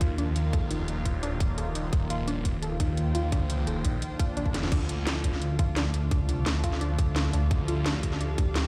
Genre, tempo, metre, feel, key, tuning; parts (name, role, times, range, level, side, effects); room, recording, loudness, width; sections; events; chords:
dark technical drum and bass; 172 BPM; 4/4; straight; A4 = 436 Hz
sweeping resonant pad; sustained chords; 0.0-8.7 s; D3 to G4; -37 LUFS; equal; chorus, sidechain pumping
warbly dusty pluck; arpeggios; 0.0-8.5 s; D4 to A4; -39 LUFS; equal; chorus, sidechain pumping, dub echo
phased detuned saw bass; bass; 0.0-8.4 s; Eb1 to Eb2; -32 LUFS; equal; phaser, tube saturation
drum and bass drum kit; drums; 0.0-8.6 s; crash cymbal, hi-hat, snare drum; -36 LUFS; equal
electronic kick drum; drums; 0.0-8.5 s; -29 LUFS; equal
dark studio string section; texture; 0.0-8.7 s; D4 to G5; -43 LUFS; equal; sidechain pumping
swell; sound effects; 4.2-4.7 s; -46 LUFS; equal
pulsing pluck wobble bass; bass; 5.6-8.7 s; D2; -30 LUFS; equal; chorus
light reverb, digital ambience; played on a big sound system in a bare room, large studio reverb; -28 LUFS; mono
0.0-8.7 A section
fade-in on string section 0.0-8.7; swell 4.2-4.7; drum fill 4.5
0.0 Ebsus2; 4.7 Dm